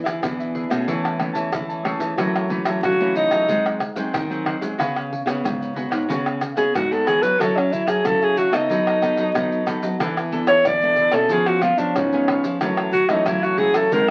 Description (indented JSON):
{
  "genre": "samba and choro",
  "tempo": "92 BPM",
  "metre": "4/4",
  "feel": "straight",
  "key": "F# minor",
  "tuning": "A4 = 443 Hz",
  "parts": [
    { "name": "cavaquinho", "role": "accompaniment", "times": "0.0-14.1 s", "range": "D4 to A5", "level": "-33 LUFS", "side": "equal", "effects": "none" },
    { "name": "nylon-string guitar", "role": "accompaniment", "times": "0.0-14.1 s", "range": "F#2 to A4", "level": "-30 LUFS", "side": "equal", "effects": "none" },
    { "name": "nylon-string guitar", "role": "bass", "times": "0.1-14.1 s", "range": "G#2 to G#3", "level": "-29 LUFS", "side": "equal", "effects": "none" },
    { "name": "maracas, pandeiro, tamborim and surdo", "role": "percussion", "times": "0.1-14.1 s", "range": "none", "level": "-30 LUFS", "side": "equal", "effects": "none" },
    { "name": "breathy alto saxophone", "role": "melody", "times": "2.8-14.1 s", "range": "C#4 to D5", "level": "-20 LUFS", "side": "equal", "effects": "none" }
  ],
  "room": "moderate studio ambience, RT60 0.5 s",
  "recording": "very old 78 rpm record, vinyl crackle, nothing above 10.7 kHz",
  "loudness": "-21 LUFS",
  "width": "mono",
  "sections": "0.0-14.1 A section",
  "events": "alto saxophone solo 0.0-14.1",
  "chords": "0.0 E7; 0.9 Amaj7/E; 2.2 F#m7; 3.5 G#7; 4.8 C#7sus4; 7.4 F#m7; 8.7 B7/F#; 10.0 E7sus4; 11.3 C#7/E#; 12.6 F#m7"
}